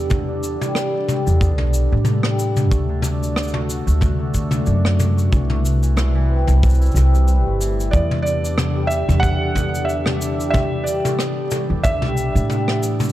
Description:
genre	folktronica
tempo	92 BPM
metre	4/4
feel	swing 56% on 16ths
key	E minor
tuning	A4 = 440 Hz
part	warbly tape-like pad	sustained chords	0.0-13.1 s	C3 to B4	-28 LUFS	equal	chorus, built-in reverb, phaser
part	cimbalom	arpeggios	0.0-13.1 s	D3 to F#4	-26 LUFS	left 1 dB	digital delay
part	upright bass	bass	0.0-13.1 s	G1 to A2	-18 LUFS	equal	none
part	jazz brush drum kit	drums	0.1-13.1 s	cabasa, rim click, toms	-24 LUFS	left 1 dB	none
part	kick drum	drums	0.1-12.0 s	none	-21 LUFS	equal	none
part	felt-muted upright piano	melody	7.9-12.8 s	D5 to F#5	-24 LUFS	right 2 dB	digital delay
room	light reverb, small room ambience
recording	dark, warm production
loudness	-16 LUFS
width	side -14 dB against mid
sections	0.0-13.1 A section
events	none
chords	0.0 Em7; 2.7 D; 5.3 Am7/C; 7.9 Em7

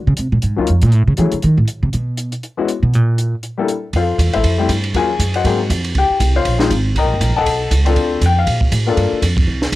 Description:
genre	jazz, small-group swing and bop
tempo	238 BPM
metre	4/4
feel	swing 57% on 8ths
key	unclear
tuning	A4 = 438 Hz
part	upright bass	bass	0.0-9.8 s	Eb1 to Fb3	-15 LUFS	right 1 dB	none
part	compact cocktail drum kit	drums	0.2-9.8 s	hi-hat, kick drum, ride cymbal, snare drum	-21 LUFS	right 1 dB	cassette tape
part	warm upright piano	accompaniment	0.6-9.2 s	Gb3 to Bb5	-18 LUFS	left 5 dB	cassette tape
room	light reverb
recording	home recording on cassette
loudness	-14 LUFS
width	side -16 dB against mid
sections	0.0-3.9 A section; 3.9-9.8 A section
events	upright bass solo 0.0-3.9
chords	0.0 Ebm9; 0.9 Gbm7; 1.4 Adim; 1.9 N.C.; 3.4 Gm69; 3.9 Fmaj9; 4.9 Ebm7; 5.4 Ab13; 5.9 Dbmaj7; 7.0 Cm7; 7.5 B9; 8.0 Bbmaj9; 9.0 Gm9

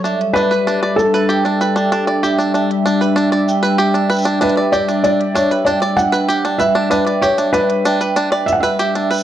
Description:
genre	folktronica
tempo	96 BPM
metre	4/4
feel	straight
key	E dorian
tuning	A4 = 441 Hz
part	vibraphone with medium hard mallets	second line	0.0-9.2 s	E5 to G5	-22 LUFS	right 6 dB	plate reverb, tape echo
part	warm analog pad	sustained chords	0.0-9.2 s	G3 to E5	-19 LUFS	left 1 dB	chorus
part	bluegrass banjo	arpeggios	0.0-9.2 s	D4 to D5	-19 LUFS	equal	low-pass filter, plate reverb, tape echo
part	electronic hi-hat and shaker	drums	0.1-9.2 s	none	-33 LUFS	right 2 dB	low-pass filter on hats, low-pass filter on perc, low-pass filter on room
part	felt-muted upright piano	melody	0.3-9.2 s	A4 to F#5	-17 LUFS	equal	plate reverb, tape echo
room	wet studio reverb, RT60 0.6 s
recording	dark, warm production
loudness	-13 LUFS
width	side -11 dB against mid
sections	0.0-9.2 A section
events	none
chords	0.0 Em7/G

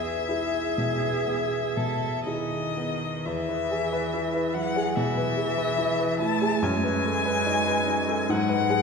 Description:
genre	classical, slow romantic movement for piano trio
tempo	58-74 BPM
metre	4/4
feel	rubato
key	E major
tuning	A4 = 440 Hz
part	rich violin	melody	0.0-8.8 s	D#5 to A5	-28 LUFS	left 6 dB	none
part	rich cello	second line	0.0-8.8 s	D#3 to A4	-30 LUFS	right 5 dB	none
part	warm grand piano	accompaniment	0.0-8.8 s	E2 to B4	-27 LUFS	equal	none
room	wet concert hall reverb, RT60 2.5 s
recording	minimal, uncompressed stereo recording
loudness	-23 LUFS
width	side -5 dB against mid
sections	0.0-3.3 A section; 3.3-8.8 B section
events	none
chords	0.0 E; 6.6 B7/F#; 8.3 E/G# (rootless)

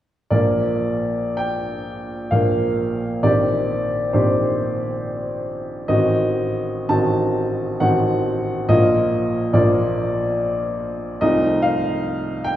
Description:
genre	classical, romantic character piece for solo piano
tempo	54-74 BPM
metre	3/4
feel	rubato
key	Bb major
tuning	A4 = 440 Hz
part	clear upright piano	solo	0.3-12.6 s	A1 to A5	-18 LUFS	equal	none
room	wet recital hall reverb, RT60 1.7 s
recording	recorded in a church or concert hall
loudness	-18 LUFS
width	side -12 dB against mid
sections	0.3-12.6 A section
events	none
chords	0.3 Bb; 3.2 Cm7/Bb; 5.9 Adim7; 8.7 Bb; 11.2 F7/C

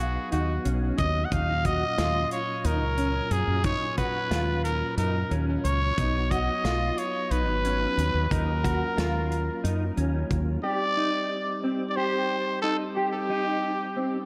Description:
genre	progressive instrumental, band music in an uneven meter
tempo	180 BPM (eighths)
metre	7/8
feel	straight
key	Eb minor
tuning	A4 = 440 Hz
part	growling trumpet	melody	0.0-14.3 s	F#4 to F#5	-31 LUFS	equal	tape echo
part	mellow tonewheel organ	accompaniment	0.0-14.3 s	Bb2 to G4	-36 LUFS	equal	chorus vibrato, slow rotary speaker
part	mellow electric guitar	arpeggios	0.0-14.2 s	C4 to G4	-35 LUFS	equal	ensemble chorus, tape echo
part	woody fretless electric bass	bass	0.0-10.6 s	Ab1 to Gb2	-30 LUFS	equal	none
part	modern studio drum kit	drums	0.3-10.5 s	hi-hat, kick drum, snare drum	-34 LUFS	equal	none
room	moderate plate reverb, RT60 1.8 s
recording	dreamy mix soaked in reverb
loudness	-27 LUFS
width	mono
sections	0.0-10.6 A section; 10.6-14.3 B section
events	none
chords	0.0 B; 1.3 Ebm7; 6.0 B; 8.3 Ebm7; 10.6 Cm

